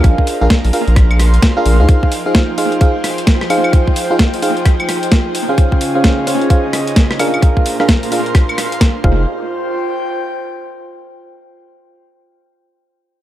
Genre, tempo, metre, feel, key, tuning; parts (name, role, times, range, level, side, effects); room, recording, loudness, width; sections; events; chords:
UK garage, two-step garage; 130 BPM; 4/4; swing 62% on 16ths; F minor; A4 = 440 Hz
soft string machine; sustained chords; 0.0-9.3 s; Bb2 to G5; -25 LUFS; equal; ensemble chorus, sidechain pumping
FM electric piano; stabs; 0.0-9.2 s; Db4 to F5; -17 LUFS; right 1 dB; chorus, low-pass filter, tape echo
saturated sub bass; bass; 0.0-1.9, 9.0-9.3 s; F1 to D2; -11 LUFS; equal; sidechain pumping
breakbeat sampler-style drum kit; drums; 0.0-8.9 s; claves, hi-hat, rim click, snare drum; -18 LUFS; equal; overdrive, analog delay
electronic kick drum; drums; 0.0-9.2 s; -11 LUFS; equal
airy breathy pad; texture; 0.0-11.1 s; Db4 to C6; -22 LUFS; equal; chorus, sidechain pumping
light reverb; echo-heavy mix; -11 LUFS; side -13 dB against mid
0.0-9.3 A section; 9.3-11.1 B section
0.0 Bb7; 1.9 Fm7; 5.3 Dbmaj7; 7.2 Bb7; 9.0 Fm7; 9.3 F5